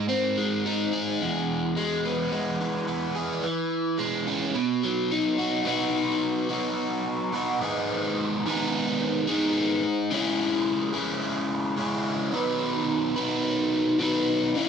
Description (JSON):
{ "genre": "rock", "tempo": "108 BPM", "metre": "4/4", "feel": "straight", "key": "unclear", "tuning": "A4 = 440 Hz", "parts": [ { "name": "overdriven electric guitar", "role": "solo", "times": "0.0-14.7 s", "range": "E2 to B4", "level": "-24 LUFS", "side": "equal", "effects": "phaser" } ], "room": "little or no reverb", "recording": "dry, close 1970s-style studio recording", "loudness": "-24 LUFS", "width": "side -7 dB against mid", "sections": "0.0-5.7 A section; 5.7-14.6 B section", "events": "none", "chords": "0.0 G#; 1.2 E; 3.4 C#m/E; 4.6 B; 7.6 G#m; 10.1 C#m; 12.3 B", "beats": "0.10 0.66 | 1.22 1.77 2.33 2.89 | 3.45 4.00 4.56 5.12 | 5.67 6.23 6.79 7.34 | 7.90 8.46 9.01 9.57 | 10.12 10.68 11.23 11.79 | 12.34 12.90 13.45 14.01 | 14.56" }